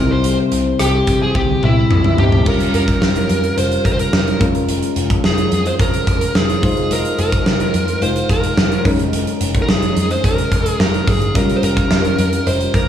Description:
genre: 1980s-style pop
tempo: 108 BPM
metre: 4/4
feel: straight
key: unclear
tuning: A4 = 442 Hz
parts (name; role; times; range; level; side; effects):
- fuzz lead guitar; melody; 0.0-12.9 s; E4 to C5; -20 LUFS; right 1 dB; distortion, digital delay, slapback echo
- soft electric-piano-like synth keys; accompaniment; 0.0-12.9 s; C3 to C5; -20 LUFS; left 2 dB; chorus
- vintage muted picked electric bass; bass; 0.0-12.9 s; F1 to C3; -21 LUFS; equal; none
- big rock drum kit; drums; 0.2-12.9 s; crash cymbal, hi-hat, kick drum, rim click, snare drum, toms; -18 LUFS; equal; none
- cowbell; percussion; 11.4-12.6 s; none; -35 LUFS; right 3 dB; none
room: moderate lush hall reverb, RT60 2.6 s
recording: big arena sound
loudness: -13 LUFS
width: side -10 dB against mid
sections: 0.0-2.5 A section; 2.5-12.9 B section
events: drum fill 1.4-2.5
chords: 0.0 C; 2.5 Gm7b5/F; 4.4 Bbm7/F; 6.6 Fm7; 8.9 Eb7sus4/F; 11.4 Gm7b5/F

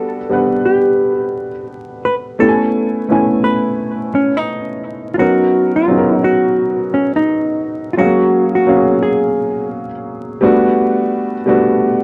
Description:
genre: hip hop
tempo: 86 BPM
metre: 4/4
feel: swing 63% on 16ths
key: unclear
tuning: A4 = 442 Hz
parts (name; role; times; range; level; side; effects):
- hollow-body jazz guitar; melody; 0.0-9.7 s; C#4 to B4; -18 LUFS; equal; low-pass filter, analog delay
- dark upright piano; accompaniment; 0.0-12.0 s; F#3 to G#5; -18 LUFS; equal; cassette tape, low-pass filter
room: wet studio reverb, RT60 0.6 s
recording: vinyl crackle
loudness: -15 LUFS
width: mono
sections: 0.0-5.2 A section; 5.2-12.0 B section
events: none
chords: 0.0 Gmaj9; 2.4 Amaj9; 5.2 Bmaj9; 8.0 F#maj9; 10.4 Gmaj9

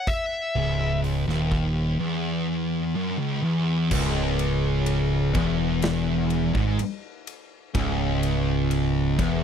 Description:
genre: stoner and doom metal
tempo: 62 BPM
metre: 4/4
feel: straight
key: C# minor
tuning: A4 = 440 Hz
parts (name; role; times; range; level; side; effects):
- fuzz lead guitar; melody; 0.0-1.0 s; E5; -29 LUFS; left 2 dB; wah, distortion, tape echo
- big rock drum kit; drums; 0.1-9.4 s; crash cymbal, hi-hat, kick drum, ride cymbal, snare drum; -31 LUFS; equal; none
- thick fuzz guitar; riff; 0.6-9.4 s; C#2 to G#2; -27 LUFS; left 9 dB; distortion
- thick fuzz guitar; riff; 0.6-9.4 s; C#2 to G#2; -27 LUFS; right 8 dB; distortion
- modern bright picked electric bass; bass; 0.6-9.4 s; C#1 to G#1; -28 LUFS; equal; overdrive
- fuzz guitar; riff; 3.9-9.4 s; C#2 to G#2; -28 LUFS; equal; distortion
room: little or no reverb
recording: dry, close 1970s-style studio recording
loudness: -22 LUFS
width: side -8 dB against mid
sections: 0.0-3.9 A section; 3.9-9.4 B section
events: none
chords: 0.0 C#m

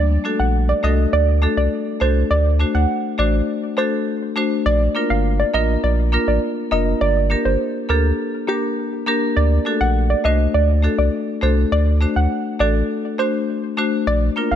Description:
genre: dancehall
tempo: 102 BPM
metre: 4/4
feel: straight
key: unclear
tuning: A4 = 442 Hz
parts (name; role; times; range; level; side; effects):
- soft round pluck; melody; 0.0-14.6 s; G4 to F#5; -22 LUFS; right 2 dB; chorus
- warm sub bass; bass; 0.0-14.6 s; F1 to D2; -17 LUFS; equal; none
- marimba with medium hard mallets; accompaniment; 0.2-14.5 s; A3 to C5; -21 LUFS; left 3 dB; none
room: studio reverb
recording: none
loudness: -16 LUFS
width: side -9 dB against mid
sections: 0.0-14.6 A section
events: none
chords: 0.0 D; 4.7 Bb; 7.0 Gm; 9.4 D

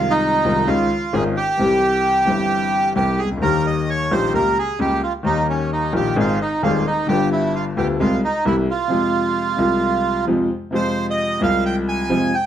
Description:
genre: tango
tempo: 131 BPM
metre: 4/4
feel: rubato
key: F minor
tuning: A4 = 438 Hz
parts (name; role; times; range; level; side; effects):
- bandoneon; melody; 0.0-12.4 s; Db4 to Ab5; -20 LUFS; right 3 dB; none
- warm grand piano; accompaniment; 0.0-12.3 s; Eb1 to Ab4; -19 LUFS; left 2 dB; none
room: moderate studio reverb, RT60 0.8 s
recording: none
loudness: -17 LUFS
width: side -10 dB against mid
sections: 0.0-10.7 A section; 10.7-12.5 B section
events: none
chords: 0.0 Fm7/C; 0.7 Dbadd9; 1.6 C; 3.4 Eb; 4.3 Gdim/Db; 5.3 Eb; 6.2 Ab; 7.1 G7; 8.0 Fm/C; 8.4 C; 8.9 Fm

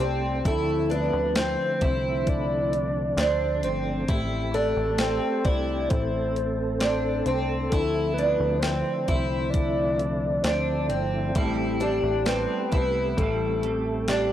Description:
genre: dream pop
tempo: 66 BPM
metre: 4/4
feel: straight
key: A minor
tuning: A4 = 440 Hz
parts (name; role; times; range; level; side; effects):
- soft octave-layered synth lead; melody; 0.0-14.3 s; G4 to D5; -28 LUFS; equal; chorus
- mellow tonewheel organ; sustained chords; 0.0-14.3 s; D3 to A4; -31 LUFS; right 1 dB; chorus vibrato, slow rotary speaker
- fingerpicked twelve-string acoustic guitar; arpeggios; 0.0-14.3 s; C4 to E4; -29 LUFS; equal; lush chorus, tape echo
- plucky analog bass; bass; 0.0-14.3 s; G1 to D2; -30 LUFS; equal; none
- crisp 8-bit digital drum machine; drums; 0.0-14.3 s; hi-hat, kick drum, snare drum; -26 LUFS; equal; none
- semi-hollow electric guitar; accompaniment; 11.3-14.3 s; A2 to A4; -32 LUFS; right 4 dB; harmonic tremolo, analog chorus
room: moderate concert hall reverb, RT60 2.1 s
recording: dry, gritty hardware recording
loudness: -22 LUFS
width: side -11 dB against mid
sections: 0.0-14.3 A section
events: none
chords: 0.5 Dm7; 4.1 Am7; 7.7 Dm7; 11.4 Am7

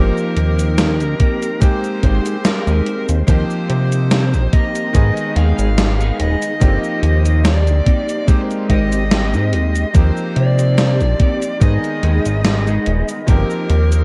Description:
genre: vaporwave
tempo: 72 BPM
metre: 4/4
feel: swing 54% on 16ths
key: Eb major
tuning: A4 = 439 Hz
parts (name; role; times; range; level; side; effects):
- smooth overdriven lead guitar; melody; 0.0-14.0 s; Bb4 to F5; -26 LUFS; equal; vintage 12-bit sampler grit, tape echo
- bright electric grand piano; accompaniment; 0.0-14.0 s; Eb3 to Ab4; -25 LUFS; equal; lush chorus
- soft string machine; sustained chords; 0.4-14.0 s; Ab3 to C6; -33 LUFS; equal; none
- chorused synth bass; bass; 0.0-14.0 s; Eb1 to C3; -18 LUFS; equal; none
- gated 80s digital drum machine; drums; 0.2-14.0 s; cabasa, hi-hat, snare drum; -22 LUFS; equal; gated reverb, gated reverb snare, vintage 12-bit sampler grit
- clean electric guitar; riff; 0.4-14.0 s; Ab3 to G5; -28 LUFS; equal; ensemble chorus
- electronic kick drum; drums; 1.2-13.5 s; none; -15 LUFS; equal; vintage 12-bit sampler grit
room: little or no reverb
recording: dark, warm production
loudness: -16 LUFS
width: mono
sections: 0.0-14.0 A section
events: clean electric guitar fill 1.6-3.3, 8.7-9.9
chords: 0.0 Eb6/G; 1.6 Abmaj7; 3.3 Eb6; 4.9 Abm; 6.6 Eb6/G; 8.3 Abmaj7; 9.9 Eb6; 11.6 Abm; 13.3 Eb6/G

